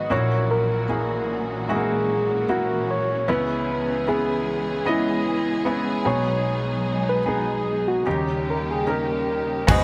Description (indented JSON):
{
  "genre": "pop ballad",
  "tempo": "76 BPM",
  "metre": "4/4",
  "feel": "straight",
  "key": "unclear",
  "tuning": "A4 = 438 Hz",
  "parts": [
    { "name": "soft struck synth lead", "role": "melody", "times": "0.0-9.8 s", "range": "E4 to D#5", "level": "-27 LUFS", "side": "equal", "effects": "chorus" },
    { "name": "clear baby grand piano", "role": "accompaniment", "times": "0.0-9.8 s", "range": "G#1 to D#5", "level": "-27 LUFS", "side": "equal", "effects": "subtle chorus" },
    { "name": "dark studio string section", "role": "sustained chords", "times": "0.0-9.8 s", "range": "A#2 to G#4", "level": "-31 LUFS", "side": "equal", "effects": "none" },
    { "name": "mellow French horn section", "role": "second line", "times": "9.7-9.8 s", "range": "G#2 to B3", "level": "-35 LUFS", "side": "equal", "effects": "none" },
    { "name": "fingerpicked steel-string acoustic guitar", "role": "arpeggios", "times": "9.7-9.8 s", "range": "G#2 to B4", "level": "-29 LUFS", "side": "equal", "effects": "lush chorus" },
    { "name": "modern studio drum kit", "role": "drums", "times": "9.7-9.8 s", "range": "crash cymbal, kick drum, toms", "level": "-20 LUFS", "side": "equal", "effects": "gated reverb" }
  ],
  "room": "light reverb, small room ambience",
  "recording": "bright 1980s-style digital production",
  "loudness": "-23 LUFS",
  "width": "mono",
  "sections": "0.0-9.7 A section",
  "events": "none",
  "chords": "0.1 F#7/A#; 3.3 C#m7; 6.0 B6; 8.1 D#7"
}